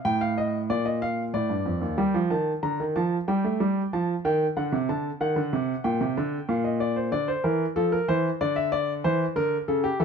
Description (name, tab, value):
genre	classical, baroque-style two-part invention for grand piano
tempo	94 BPM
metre	4/4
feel	straight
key	G minor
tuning	A4 = 438 Hz
part	warm grand piano	solo	0.0-10.0 s	Eb2 to Bb5	-23 LUFS	equal	none
room	light reverb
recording	none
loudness	-23 LUFS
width	side -6 dB against mid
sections	0.0-2.0 A section; 2.0-10.0 B section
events	none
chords	0.0 F/A; 0.7 Bb; 2.0 Gm; 3.3 Ebadd9; 4.6 D; 5.9 Gm/Bb; 7.1 Dm; 8.4 C9/D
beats	0.06 0.70 1.34 | 1.99 2.64 3.29 3.93 | 4.57 5.21 5.85 6.49 | 7.13 7.77 8.41 9.05 | 9.69